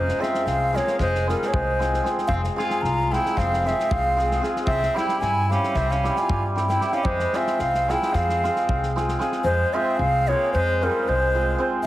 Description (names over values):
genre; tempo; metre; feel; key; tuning
balkan folk, Balkan wedding band; 226 BPM (eighths); 9/8; straight; F harmonic minor; A4 = 438 Hz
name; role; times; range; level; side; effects
breathy reedy ney; melody; 0.0-11.9 s; Bb4 to Bb5; -24 LUFS; equal; none
clear trumpet; second line; 0.0-11.7 s; G3 to F4; -30 LUFS; left 2 dB; none
upright bass; bass; 0.0-11.5 s; F1 to G2; -26 LUFS; equal; none
natural country drum kit; percussion; 0.1-9.4 s; kick drum, snare drum; -31 LUFS; equal; none
hammered dulcimer; accompaniment; 0.2-11.9 s; G3 to C5; -26 LUFS; right 1 dB; none
room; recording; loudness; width
moderate recital hall reverb, RT60 1.8 s; heavily compressed radio sound; -20 LUFS; side -14 dB against mid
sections
0.0-9.4 A section; 9.4-11.9 A section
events
none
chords
0.0 Fm; 4.7 C; 7.1 Fm